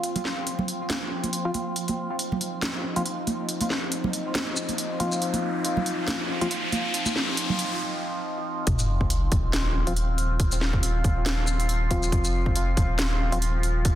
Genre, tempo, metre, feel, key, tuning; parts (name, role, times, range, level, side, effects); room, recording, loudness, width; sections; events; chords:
deep dubstep; 139 BPM; 4/4; swing 56% on 16ths, half-time; A4 = 440 Hz
overtone-sweeping drone; sustained chords; 0.0-14.0 s; F3 to F4; -31 LUFS; equal; chorus, built-in reverb
garage drum kit; drums; 0.0-13.9 s; hi-hat, shaker, snare drum; -29 LUFS; equal
congas; percussion; 0.2-7.6 s; -32 LUFS; right 3 dB; dub echo
percussive organ stab; stabs; 1.5-6.5, 9.9-13.4 s; F3 to F4; -32 LUFS; left 1 dB; chorus, dub echo
riser and sub drop; sound effects; 3.9-10.4 s; -32 LUFS; left 1 dB
soft dub sub bass; bass; 8.7-14.0 s; Eb1 to F1; -25 LUFS; equal
electronic kick drum; drums; 8.7-13.9 s; -25 LUFS; equal
moderate echo chamber reverb, RT60 2.1 s; dense, heavily limited modern master; -23 LUFS; side -12 dB against mid
0.0-8.7 A section; 8.7-14.0 B section
build-up 0.0-8.7; riser 3.9-7.8; break 7.8-8.7; drop 8.7-14.0; impact 8.7-10.4
0.0 F5